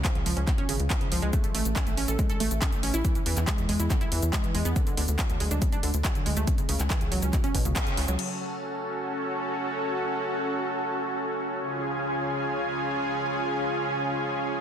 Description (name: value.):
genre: uplifting trance.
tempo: 140 BPM.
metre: 4/4.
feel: straight.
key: F# minor.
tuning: A4 = 440 Hz.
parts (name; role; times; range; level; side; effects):
analog pluck; arpeggios; 0.0-8.2 s; B2 to A4; -31 LUFS; right 2 dB; chorus, sidechain pumping, dub echo.
tight sequencer bass; bass; 0.0-8.2 s; G#1 to E2; -28 LUFS; equal; sidechain pumping.
electronic kick drum; drums; 0.0-7.8 s; none; -27 LUFS; equal; none.
techno drum kit; drums; 0.0-8.3 s; crash cymbal, handclaps, hi-hat, shaker; -32 LUFS; equal; none.
supersaw pad; sustained chords; 8.2-14.6 s; C#3 to G#5; -26 LUFS; equal; sidechain pumping.
room: light reverb, digital ambience.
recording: dense, heavily limited modern master.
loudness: -25 LUFS.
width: side -9 dB against mid.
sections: 0.0-8.2 A section; 8.2-14.6 B section.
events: band accent 7.8.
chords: 0.0 C#; 1.3 A; 3.0 E; 4.8 N.C.; 8.2 F#m; 11.6 C#.